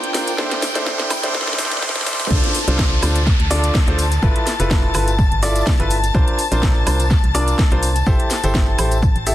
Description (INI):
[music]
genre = piano house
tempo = 125 BPM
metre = 4/4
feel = swing 54% on 16ths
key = D minor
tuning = A4 = 440 Hz
[part]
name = dark chamber string section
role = sustained chords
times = 0.0-9.3 s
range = G5 to A6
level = -26 LUFS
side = left 3 dB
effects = sidechain pumping
[part]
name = clear baby grand piano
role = riff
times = 0.0-9.3 s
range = D4 to E5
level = -22 LUFS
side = equal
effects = sidechain pumping, digital delay
[part]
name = garage drum kit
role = drums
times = 0.0-9.3 s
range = cabasa, crash cymbal, hi-hat, snare drum, woodblock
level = -24 LUFS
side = equal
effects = soft clipping on snare
[part]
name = riser, swell and downlifter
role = sound effects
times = 0.0-6.1 s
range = none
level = -26 LUFS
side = right 1 dB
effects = none
[part]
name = tambourine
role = percussion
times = 0.1-9.3 s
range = none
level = -34 LUFS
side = left 5 dB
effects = none
[part]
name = electronic kick drum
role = drums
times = 0.4-9.1 s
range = none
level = -17 LUFS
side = equal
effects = high-pass filter on kick, high-pass filter on room
[part]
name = organ-like FM bass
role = bass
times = 2.3-9.3 s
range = F1 to D2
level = -19 LUFS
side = equal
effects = sidechain pumping
[sound]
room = light reverb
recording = dense, heavily limited modern master, high-pass filter, lossy compression artefacts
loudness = -15 LUFS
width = side -13 dB against mid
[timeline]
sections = 0.0-2.3 A section; 2.3-9.3 B section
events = build-up 0.0-2.3; drum fill 0.0-2.3; riser 0.0-2.3; filter sweep on grand piano 0.0-2.3; swell 1.3-2.3; drop 2.3-9.3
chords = 0.4 Am7; 2.3 Dm7; 4.2 G13; 6.1 C9sus4; 8.1 Am7